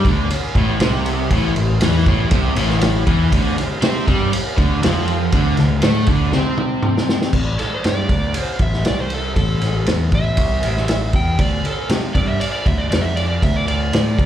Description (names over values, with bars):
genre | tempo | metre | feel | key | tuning
blues rock power trio and southern rock | 119 BPM | 4/4 | straight | A minor | A4 = 436 Hz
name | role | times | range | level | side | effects
overdriven semi-hollow guitar | riff | 0.0-7.3 s | A2 to C4 | -20 LUFS | equal | slapback echo
growling picked electric bass | bass | 0.0-14.3 s | A1 to C3 | -20 LUFS | equal | overdrive
vintage drum kit | drums | 0.0-14.3 s | crash cymbal, kick drum, ride cymbal, snare drum, toms | -19 LUFS | equal | none
overdriven slide guitar | melody | 7.6-14.3 s | A4 to G5 | -24 LUFS | right 1 dB | slapback echo
room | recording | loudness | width
small room reverb | live gig heard through the venue's PA, club reverb | -15 LUFS | side -10 dB against mid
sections
0.0-7.3 A section; 7.3-14.3 B section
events
drum fill 6.3-7.3; electric slide guitar solo 7.3-14.3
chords
0.0 Am; 3.3 D5; 7.3 Am; 11.4 D5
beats
0.29 0.80 | 1.30 1.80 2.31 2.81 | 3.32 3.82 4.32 4.83 | 5.33 5.83 6.34 6.84 | 7.35 7.85 8.36 8.86 | 9.37 9.87 10.38 10.88 | 11.39 11.90 12.41 12.91 | 13.42 13.93